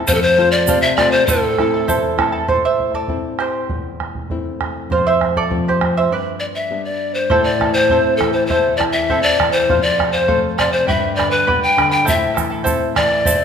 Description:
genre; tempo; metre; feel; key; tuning
andean folk, Andean ensemble; 100 BPM; 2/4; straight; A minor; A4 = 440 Hz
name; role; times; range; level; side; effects
charango; accompaniment; 0.0-13.4 s; E4 to B5; -20 LUFS; right 3 dB; none
nylon-string guitar; accompaniment; 0.0-13.4 s; E2 to F4; -23 LUFS; left 4 dB; none
breathy pan flute; melody; 0.1-2.2, 6.4-13.4 s; A4 to G5; -16 LUFS; left 2 dB; none
bombo; percussion; 0.1-13.4 s; none; -23 LUFS; right 4 dB; none
egg shaker; percussion; 0.1-2.0, 12.1-13.4 s; none; -25 LUFS; right 7 dB; none
room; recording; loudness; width
wet recital hall reverb, RT60 1.6 s; minimal, uncompressed stereo recording; -14 LUFS; side -7 dB against mid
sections
0.0-2.5 A section; 2.5-7.3 B section; 7.3-13.4 C section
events
charango solo 2.5-7.3; break 6.1-7.3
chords
0.1 F; 1.3 Am; 4.9 F; 6.1 G; 7.3 Am; 9.7 F; 10.9 G; 12.1 Am

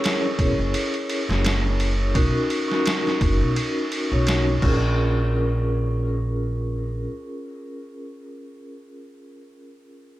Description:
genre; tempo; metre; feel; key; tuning
trip hop; 85 BPM; 4/4; swing 55% on 16ths; Bb phrygian; A4 = 440 Hz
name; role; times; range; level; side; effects
vibraphone with soft mallets; accompaniment; 0.0-10.2 s; Db4 to Db5; -26 LUFS; equal; tremolo, tape echo
trip hop sampler-style drum kit; drums; 0.0-4.8 s; crash cymbal, kick drum, ride cymbal, snare drum; -25 LUFS; equal; overdrive
upright bass; bass; 0.4-7.1 s; Fb1 to B1; -22 LUFS; equal; none
room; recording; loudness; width
little or no reverb; none; -20 LUFS; side -15 dB against mid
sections
0.0-5.0 A section; 5.0-7.8 B section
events
none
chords
0.0 Gb7; 2.2 Bmaj7; 4.6 Bbm7

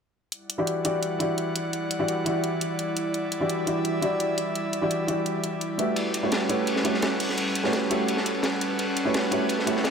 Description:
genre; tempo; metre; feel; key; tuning
liquid drum and bass; 170 BPM; 4/4; straight; E dorian; A4 = 440 Hz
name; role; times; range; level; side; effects
airy breathy pad; sustained chords; 0.3-9.9 s; G3 to F#5; -29 LUFS; equal; chorus
electronic hi-hat; drums; 0.3-9.9 s; none; -33 LUFS; equal; none
felt-muted upright piano; accompaniment; 0.6-9.9 s; E3 to E5; -26 LUFS; right 1 dB; vintage 12-bit sampler grit, low-pass filter, ping-pong delay
crunchy breakbeat drum kit; drums; 6.0-9.9 s; hi-hat, ride cymbal, snare drum; -28 LUFS; equal; high-pass filter on cymbals, high-pass filter on hats, high-pass filter on snare, high-pass filter on room
room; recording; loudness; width
moderate lush hall reverb, RT60 2.3 s; none; -24 LUFS; side -6 dB against mid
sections
0.3-9.9 A section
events
none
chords
0.3 Em9; 6.0 A13

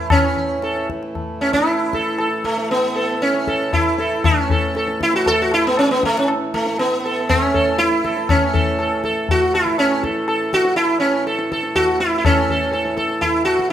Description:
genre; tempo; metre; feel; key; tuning
indian classical, Hindustani; 119 BPM; 4/4; straight; A raga bhupali; A4 = 440 Hz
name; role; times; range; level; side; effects
sitar; melody; 0.0-13.7 s; A3 to A4; -17 LUFS; right 1 dB; none
hand-pumped harmonium; drone; 0.0-13.7 s; A2 to E3; -27 LUFS; equal; none
tabla; percussion; 0.1-13.7 s; none; -23 LUFS; left 3 dB; none
room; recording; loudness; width
moderate recital hall reverb, RT60 1.6 s; minimal, uncompressed stereo recording; -16 LUFS; side -10 dB against mid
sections
0.0-12.2 A section; 12.2-13.7 B section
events
speeding up 0.0-13.7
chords
none

